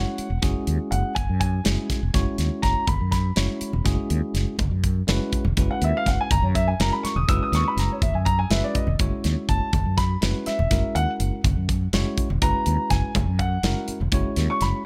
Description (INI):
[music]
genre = electric jazz fusion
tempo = 245 BPM (eighths)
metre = 7/8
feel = straight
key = F# mixolydian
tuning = A4 = 440 Hz
[part]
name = dark baby grand piano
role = melody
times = 0.0-14.8 s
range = C#5 to E6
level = -29 LUFS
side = equal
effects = none
[part]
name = bell-like tine electric piano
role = accompaniment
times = 0.0-14.8 s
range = G#3 to C#5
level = -32 LUFS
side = equal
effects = none
[part]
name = mellow fretless electric bass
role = bass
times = 0.0-14.7 s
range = E1 to F#2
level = -26 LUFS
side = equal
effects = analog chorus
[part]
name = modern studio drum kit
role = drums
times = 0.2-14.7 s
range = hi-hat, kick drum, snare drum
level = -28 LUFS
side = equal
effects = none
[part]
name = congas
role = percussion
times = 2.9-14.8 s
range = none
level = -34 LUFS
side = equal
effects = none
[sound]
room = light reverb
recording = none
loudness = -23 LUFS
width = mono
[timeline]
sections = 0.0-14.9 A section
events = grand piano solo 0.0-14.9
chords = 0.0 F#9sus4